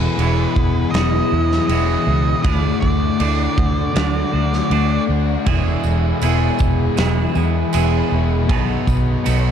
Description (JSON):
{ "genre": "rock, shoegaze and dream pop", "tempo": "79 BPM", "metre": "4/4", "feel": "straight", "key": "E major", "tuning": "A4 = 440 Hz", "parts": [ { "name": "octave-fuzz lead guitar", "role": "melody", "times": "0.0-5.0 s", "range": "B4 to D#5", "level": "-25 LUFS", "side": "right 2 dB", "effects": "distortion, tape echo" }, { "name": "glassy FM pad", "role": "sustained chords", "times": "0.0-9.5 s", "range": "E4 to C#6", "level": "-26 LUFS", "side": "left 1 dB", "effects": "ensemble chorus, built-in reverb" }, { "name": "biting overdriven guitar", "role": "riff", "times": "0.0-9.5 s", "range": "B2 to A4", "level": "-25 LUFS", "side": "right 10 dB", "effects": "reverse reverb" }, { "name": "thick fuzz guitar", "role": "riff", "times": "0.0-9.5 s", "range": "E2 to D4", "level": "-22 LUFS", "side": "left 10 dB", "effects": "distortion, wide subtle chorus" }, { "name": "vintage muted fingered electric bass", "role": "bass", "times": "0.0-9.5 s", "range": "E1 to E2", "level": "-19 LUFS", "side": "right 1 dB", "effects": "none" }, { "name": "big rock drum kit", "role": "drums", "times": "0.2-9.4 s", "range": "crash cymbal, kick drum, snare drum", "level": "-23 LUFS", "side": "right 1 dB", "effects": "none" }, { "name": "tambourine", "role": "percussion", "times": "5.8-9.4 s", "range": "none", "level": "-38 LUFS", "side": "right 12 dB", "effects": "none" } ], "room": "light reverb, studio ambience", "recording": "dark, warm production", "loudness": "-15 LUFS", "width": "side -8 dB against mid", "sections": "0.0-9.5 A section", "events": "none", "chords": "0.0 Emaj7; 2.4 Dmaj7; 5.5 Emaj7; 8.5 B7" }